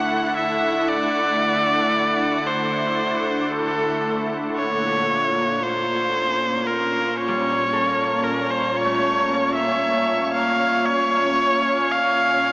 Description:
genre	ambient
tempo	57 BPM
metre	4/4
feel	straight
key	unclear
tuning	A4 = 441 Hz
part	clear electric violin	melody	0.0-12.5 s	A4 to F#5	-20 LUFS	equal	diffuse ambient delay
part	soft additive organ-like pad	sustained chords	0.0-12.5 s	Bb2 to F#5	-23 LUFS	equal	ensemble chorus, built-in reverb
part	concert harp	arpeggios	0.0-12.5 s	G3 to A5	-34 LUFS	equal	diffuse ambient delay
room	wet huge ambient reverb, RT60 7.6 s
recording	cassette tape, small speaker sound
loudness	-18 LUFS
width	side -26 dB against mid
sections	0.0-12.5 A section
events	fade-in on harp 0.0-12.5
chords	0.0 D7; 4.6 Bbm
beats	| 0.35 1.40 2.45 3.51 | 4.56 5.61 6.66 7.72 | 8.77 9.82 10.87 11.93

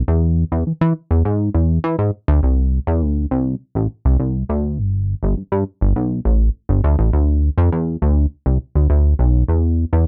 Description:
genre	funk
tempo	102 BPM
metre	4/4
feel	straight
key	unclear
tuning	A4 = 440 Hz
part	chorused synth bass	solo	0.0-10.0 s	G1 to E3	-17 LUFS	equal	none
room	little or no reverb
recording	dry, close 1970s-style studio recording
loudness	-18 LUFS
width	mono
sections	0.0-10.1 A section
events	none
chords	none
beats	| 0.08 0.67 1.25 1.84 | 2.43 3.02 3.61 4.19 | 4.78 5.37 5.96 6.55 | 7.13 7.72 8.31 8.90 | 9.49

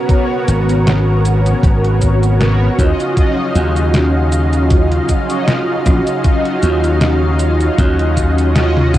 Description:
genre	vaporwave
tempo	78 BPM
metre	4/4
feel	swing 55% on 16ths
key	unclear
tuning	A4 = 440 Hz
part	mellow synth brass	accompaniment	0.0-9.0 s	B3 to D#5	-17 LUFS	right 1 dB	ensemble chorus, cassette tape, analog delay
part	lush unison pad	sustained chords	0.0-9.0 s	C#3 to E#5	-21 LUFS	equal	chorus, vintage 12-bit sampler grit, cassette tape
part	detuned 8-bit digital drum machine	drums	0.1-9.0 s	cabasa, hi-hat, snare drum, toms	-18 LUFS	equal	vintage 12-bit sampler grit, small room ambience, cassette tape
part	electronic kick drum	drums	0.1-9.0 s	none	-14 LUFS	equal	vintage 12-bit sampler grit, small room ambience, cassette tape
part	slap bass	bass	0.5-9.0 s	G#1 to D#2	-14 LUFS	equal	tube saturation
room	light reverb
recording	home recording on cassette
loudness	-11 LUFS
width	side -14 dB against mid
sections	0.0-9.0 A section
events	band accent 8.6-8.9; drum fill 8.7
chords	0.0 G#m11; 2.8 D#m9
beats	| 0.09 0.86 1.63 2.40 | 3.17 3.94 4.71 5.48 | 6.25 7.02 7.79 8.56

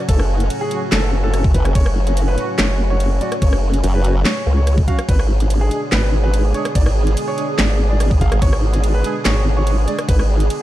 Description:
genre	heavy wobble dubstep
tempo	144 BPM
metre	4/4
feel	half-time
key	F# minor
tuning	A4 = 440 Hz
part	supersaw pad	sustained chords	0.0-10.6 s	A2 to G#4	-27 LUFS	equal	vintage 12-bit sampler grit, sidechain pumping, low-pass filter
part	ethereal airy pad	texture	0.0-10.6 s	F#4 to D#6	-28 LUFS	right 1 dB	ensemble chorus, built-in reverb, sidechain pumping
part	warm grand piano	melody	0.1-10.2 s	G#4 to E#5	-26 LUFS	equal	digital delay
part	formant-sweep wobble bass	bass	0.1-10.5 s	F#1 to C#2	-16 LUFS	equal	chorus, overdrive
part	dubstep drum kit	drums	0.1-10.6 s	crash cymbal, handclaps, hi-hat, rim click, snare drum	-24 LUFS	equal	none
part	electronic kick drum	drums	0.1-10.2 s	none	-15 LUFS	equal	none
part	dark brass ensemble	stabs	0.7-10.0 s	F#3 to G#4	-30 LUFS	right 4 dB	none
part	formant-sweep wobble bass	bass	1.5-4.2, 8.2-8.4 s	F#1 to G#1	-16 LUFS	equal	chorus, overdrive
room	digital ambience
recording	dark, warm production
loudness	-14 LUFS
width	side -14 dB against mid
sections	0.0-10.6 A section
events	none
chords	0.0 F#m; 5.1 G#dim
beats	| 0.09 0.50 0.92 1.34 | 1.75 2.17 2.59 3.00 | 3.42 3.84 4.25 4.67 | 5.09 5.50 5.92 6.34 | 6.75 7.17 7.59 8.00 | 8.42 8.84 9.25 9.67 | 10.09 10.50

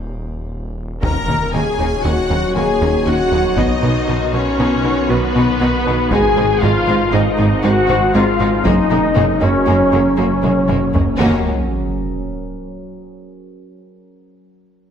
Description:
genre	cinematic, hybrid orchestral and electronic film score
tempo	118 BPM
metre	5/4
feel	straight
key	Eb minor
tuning	A4 = 439 Hz
part	detuned saw bass	bass	0.0-11.5 s	Eb1 to B1	-26 LUFS	equal	none
part	rich symphonic violin section	melody	1.0-11.5 s	B4 to Bb5	-23 LUFS	left 3 dB	low-pass filter
part	warm symphonic violin section	second line	1.0-11.5 s	Ab3 to Eb4	-26 LUFS	left 3 dB	none
part	rich symphonic viola section	accompaniment	1.0-11.5 s	B3 to Bb4	-23 LUFS	equal	low-pass filter
part	mellow French horn section	sustained chords	1.0-11.4 s	Gb3 to Bb4	-20 LUFS	left 1 dB	low-pass filter
part	metallic inharmonic drone	sustained chords	1.7-11.5 s	Eb3 to Db5	-24 LUFS	left 1 dB	chorus, built-in reverb, low-pass filter
part	harp-like synth pluck	arpeggios	1.0-11.1 s	Eb3 to B4	-24 LUFS	left 4 dB	chorus, low-pass filter
part	plucky analog bass	riff	1.0-11.1 s	Eb2 to B3	-22 LUFS	right 2 dB	low-pass filter
part	rich symphonic cello section	bass	1.0-11.5 s	Eb2 to B2	-24 LUFS	right 2 dB	none
part	rich symphonic double bass section	bass	1.0-11.5 s	Gb1 to Eb2	-24 LUFS	right 4 dB	none
part	taiko ensemble	drums	1.0-11.3 s	none	-23 LUFS	equal	none
part	impact and sub drop	sound effects	1.0-3.6, 11.2-13.7 s	none	-26 LUFS	equal	none
room	wet scoring stage reverb, RT60 1.7 s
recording	none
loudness	-13 LUFS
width	side -8 dB against mid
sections	0.0-1.0 A section; 1.0-11.2 B section; 11.2-13.7 C section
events	break 0.0-1.0; drum fill 0.3-1.0, 10.4-11.2; impact 1.0-3.6, 11.2-13.7; filter sweep 1.0-11.2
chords	0.0 N.C.; 1.0 Ebm7; 3.6 B; 6.1 Ab; 8.7 Gbadd9; 11.2 Ebm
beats	0.01 0.52 | 1.03 1.54 2.05 2.56 3.06 | 3.57 4.08 4.59 5.10 5.61 | 6.12 6.62 7.13 7.64 8.15 | 8.66 9.16 9.67 10.18 10.69 | 11.20 11.71 12.22 12.72 13.23

